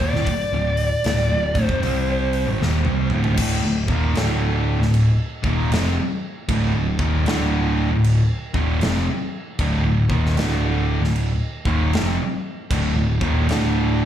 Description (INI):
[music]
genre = stoner and doom metal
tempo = 77 BPM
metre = 4/4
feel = swing 65% on 8ths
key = D minor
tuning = A4 = 440 Hz
[part]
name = fuzz lead guitar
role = melody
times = 0.0-2.6 s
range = D5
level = -25 LUFS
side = equal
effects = wah, distortion, slapback echo, tape echo
[part]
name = thick fuzz guitar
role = riff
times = 0.0-14.1 s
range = D2 to C4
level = -27 LUFS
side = left 8 dB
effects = distortion, slapback echo
[part]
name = thick fuzz guitar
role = riff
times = 0.0-14.1 s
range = D2 to C4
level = -24 LUFS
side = right 5 dB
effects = distortion, slapback echo
[part]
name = overdriven picked electric bass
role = bass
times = 0.0-14.1 s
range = D1 to C2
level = -22 LUFS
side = equal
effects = none
[part]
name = big rock drum kit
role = drums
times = 0.0-13.7 s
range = crash cymbal, hi-hat, kick drum, snare drum, toms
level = -27 LUFS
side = equal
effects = none
[part]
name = distorted electric guitar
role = riff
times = 3.4-14.1 s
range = D2 to Eb3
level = -28 LUFS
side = left 1 dB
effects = overdrive
[sound]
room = small room ambience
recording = live gig heard through the venue's PA, club ambience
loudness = -18 LUFS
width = side -10 dB against mid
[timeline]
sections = 0.0-3.4 A section; 3.4-14.1 B section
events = drum fill 2.6-3.4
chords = 0.0 D5; 3.4 Dm